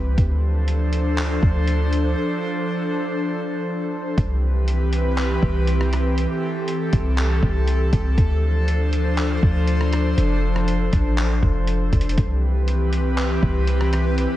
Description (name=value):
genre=hip hop, atmospheric cloud-rap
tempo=120 BPM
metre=4/4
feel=half-time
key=C major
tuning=A4 = 440 Hz
part: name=airy breathy pad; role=sustained chords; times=0.0-14.4 s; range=E3 to C5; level=-23 LUFS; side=left 1 dB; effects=chorus, sidechain pumping
part: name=clean 808-style bass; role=bass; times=0.0-14.3 s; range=F1 to D2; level=-20 LUFS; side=equal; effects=none
part: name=lo-fi sampler-style drum kit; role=drums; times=0.2-14.3 s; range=handclaps, hi-hat, kick drum, rim click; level=-25 LUFS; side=equal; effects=none
room=light reverb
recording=none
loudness=-18 LUFS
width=side -14 dB against mid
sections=0.0-4.2 A section; 4.2-14.4 B section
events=break 2.2-4.2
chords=0.2 Dm7; 2.2 F6; 4.2 Cmaj7; 8.2 Dm7; 10.2 F6; 12.2 Cmaj7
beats=| 0.18 0.68 1.18 1.68 | 2.18 2.68 3.18 3.68 | 4.18 4.68 5.18 5.68 | 6.18 6.68 7.18 7.68 | 8.18 8.68 9.18 9.68 | 10.18 10.68 11.18 11.68 | 12.18 12.68 13.18 13.68 | 14.18